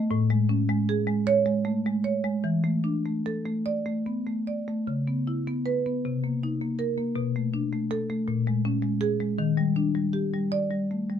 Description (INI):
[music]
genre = classical, contemporary piece for solo marimba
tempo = 49-55 BPM (dotted quarters)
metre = 6/8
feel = rubato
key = unclear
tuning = A4 = 442 Hz
[part]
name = marimba with soft mallets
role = solo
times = 0.0-11.2 s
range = A2 to D5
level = -24 LUFS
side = equal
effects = none
[sound]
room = little or no reverb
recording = close, detailed microphones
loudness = -24 LUFS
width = side -8 dB against mid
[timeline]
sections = 0.0-11.2 A section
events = none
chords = 0.1 Amaj7; 2.4 E7sus4; 4.9 C#m7; 6.0 Cm7; 7.2 Bm7; 8.3 Bbm7; 9.4 D#maj7